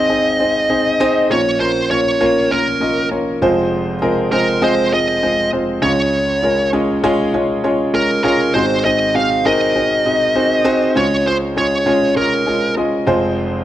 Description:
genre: pop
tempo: 99 BPM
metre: 4/4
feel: straight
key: unclear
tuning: A4 = 440 Hz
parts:
  - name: smooth overdriven lead guitar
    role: melody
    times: 0.0-12.7 s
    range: Bb4 to F5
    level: -17 LUFS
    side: right 1 dB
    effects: none
  - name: warm concert grand piano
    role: accompaniment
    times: 0.0-13.6 s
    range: F1 to F5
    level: -16 LUFS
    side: equal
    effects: none
room: moderate large studio reverb, RT60 1.1 s, small room ambience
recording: none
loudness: -13 LUFS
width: side -12 dB against mid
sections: 0.0-13.6 A section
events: none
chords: 0.0 Ab; 1.3 Bbm; 3.4 Fm; 5.8 Db; 8.5 Ab7; 11.0 Db; 13.1 Fm

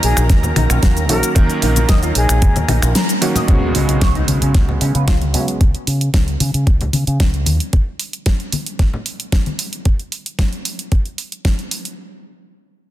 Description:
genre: nu-disco, nu disco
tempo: 113 BPM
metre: 4/4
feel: straight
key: unclear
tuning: A4 = 439 Hz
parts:
  - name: reedy silver concert flute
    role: melody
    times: 0.0-2.6 s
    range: Ab4 to Bb4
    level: -25 LUFS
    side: left 2 dB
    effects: ping-pong delay
  - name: warm electric grand piano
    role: accompaniment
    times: 0.0-5.6 s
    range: Db3 to Bb4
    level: -22 LUFS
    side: right 2 dB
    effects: low-pass filter, ping-pong delay
  - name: lush unison pad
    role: sustained chords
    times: 0.0-3.5 s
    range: Bb4 to Bb5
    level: -28 LUFS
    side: equal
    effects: chorus, sidechain pumping
  - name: electric guitar with an envelope filter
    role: riff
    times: 0.0-5.4 s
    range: Cb4 to Eb5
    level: -26 LUFS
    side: right 1 dB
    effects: lush chorus, vintage 12-bit sampler grit, low-pass filter, ping-pong delay
  - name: fingered electric bass with an envelope filter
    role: bass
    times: 0.0-7.6 s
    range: Bb1 to Db3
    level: -17 LUFS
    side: equal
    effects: sidechain pumping
  - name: pop drum kit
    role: drums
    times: 0.0-12.0 s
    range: cabasa, finger snaps, hi-hat, snare drum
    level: -22 LUFS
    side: equal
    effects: small room ambience
  - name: electronic kick drum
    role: drums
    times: 0.3-11.6 s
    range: none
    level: -14 LUFS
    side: equal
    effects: small room ambience
  - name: congas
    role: percussion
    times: 0.4-9.6 s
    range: none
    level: -23 LUFS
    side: left 3 dB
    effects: none
  - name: impact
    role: sound effects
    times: 3.5-5.6 s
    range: none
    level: -24 LUFS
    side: equal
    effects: none
room: light reverb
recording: dense, heavily limited modern master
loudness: -14 LUFS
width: side -14 dB against mid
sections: 0.0-3.5 A section; 3.5-12.0 B section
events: drop 0.0-3.5; band accent 3.0; impact 3.5-5.6; filter sweep on clean electric guitar 3.5-5.6; filter sweep on electric grand piano 3.5-5.6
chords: 0.0 Ebm7; 3.5 Db7sus4; 7.5 N.C.

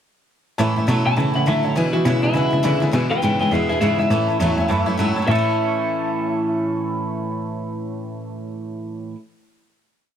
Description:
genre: rockabilly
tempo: 204 BPM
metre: 4/4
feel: swing 60% on 8ths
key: A major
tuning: A4 = 442 Hz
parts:
  - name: bright upright piano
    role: accompaniment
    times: 0.6-9.1 s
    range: B4 to B5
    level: -30 LUFS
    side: left 4 dB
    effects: none
  - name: picked steel-string acoustic guitar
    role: accompaniment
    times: 0.6-9.2 s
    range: E2 to E4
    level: -27 LUFS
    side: left 4 dB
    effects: none
  - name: twangy electric guitar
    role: riff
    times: 0.6-9.2 s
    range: E2 to A4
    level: -24 LUFS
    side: right 4 dB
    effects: analog chorus
  - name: rich cello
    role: bass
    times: 0.6-8.4 s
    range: E2 to E3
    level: -21 LUFS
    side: equal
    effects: none
  - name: electric guitar through a small old amp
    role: melody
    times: 1.1-9.1 s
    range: E4 to A5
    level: -22 LUFS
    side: left 2 dB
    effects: tape echo
room: light reverb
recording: none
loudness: -18 LUFS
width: side -9 dB against mid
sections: 0.6-5.3 A section; 5.3-7.6 final chord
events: none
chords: 0.6 A; 1.8 E7; 4.1 A

